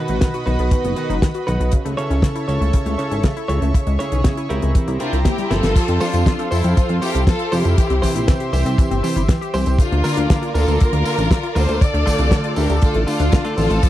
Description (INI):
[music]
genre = italo disco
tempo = 119 BPM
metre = 4/4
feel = straight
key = F major from 5.8 s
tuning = A4 = 440 Hz
[part]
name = lush unison pad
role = sustained chords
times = 0.0-13.9 s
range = F#4 to D6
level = -28 LUFS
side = equal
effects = chorus
[part]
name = analog pluck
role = arpeggios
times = 0.0-13.9 s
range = C#3 to A4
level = -27 LUFS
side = left 3 dB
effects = chorus, tape echo
[part]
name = direct-recorded clean electric guitar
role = stabs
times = 0.0-13.9 s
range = B2 to C#5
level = -25 LUFS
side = right 2 dB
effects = spring reverb
[part]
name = chorused synth bass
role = bass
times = 0.1-13.8 s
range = F#1 to F2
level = -18 LUFS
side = equal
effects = none
[part]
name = damped 70s drum kit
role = drums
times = 0.1-13.9 s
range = crash cymbal, hi-hat, snare drum, tambourine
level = -24 LUFS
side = left 1 dB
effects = none
[part]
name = kick drum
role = drums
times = 0.2-13.9 s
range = none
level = -16 LUFS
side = equal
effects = none
[part]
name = warm studio violin section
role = melody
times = 5.0-13.9 s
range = C4 to D5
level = -23 LUFS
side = left 1 dB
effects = tape echo
[sound]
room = little or no reverb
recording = dry, close 1970s-style studio recording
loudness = -16 LUFS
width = side -14 dB against mid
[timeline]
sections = 0.0-5.8 A section; 5.8-13.9 B section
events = drum fill 5.4-5.8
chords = 0.0 B; 1.7 A/C#; 3.7 C#m; 4.8 C7; 5.8 F; 7.8 C; 9.8 Bb/D; 11.8 Dm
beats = 0.21 0.72 1.22 | 1.73 2.23 2.74 3.24 | 3.74 4.25 4.75 5.26 | 5.76 6.26 6.77 7.27 | 7.78 8.28 8.79 9.29 | 9.79 10.30 10.80 11.31 | 11.81 12.31 12.82 13.32 | 13.83